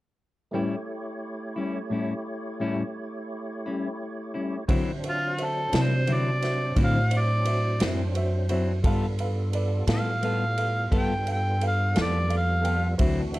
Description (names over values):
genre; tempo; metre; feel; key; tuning
slow blues; 58 BPM (dotted quarters); 12/8; straight; unclear; A4 = 440 Hz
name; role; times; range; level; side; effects
clean electric guitar; accompaniment; 0.5-13.2 s; A2 to A4; -29 LUFS; left 3 dB; harmonic tremolo
warm upright piano; accompaniment; 0.5-13.4 s; A3 to G5; -35 LUFS; right 2 dB; none
tonewheel organ; sustained chords; 0.5-13.4 s; E3 to C#5; -35 LUFS; right 1 dB; overdrive, chorus vibrato, slow rotary speaker
upright bass; bass; 4.7-13.4 s; D2 to D3; -26 LUFS; equal; none
swinging big-band drum kit; drums; 4.7-13.4 s; kick drum, ride cymbal, snare drum; -29 LUFS; equal; none
mellow harmonica; melody; 5.1-13.0 s; F4 to G5; -28 LUFS; equal; overdrive
room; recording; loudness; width
light reverb; none; -23 LUFS; side -18 dB against mid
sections
0.5-4.7 A section; 4.7-13.4 B section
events
harmonica solo 4.7-13.4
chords
0.5 A7; 4.7 D9; 8.8 G9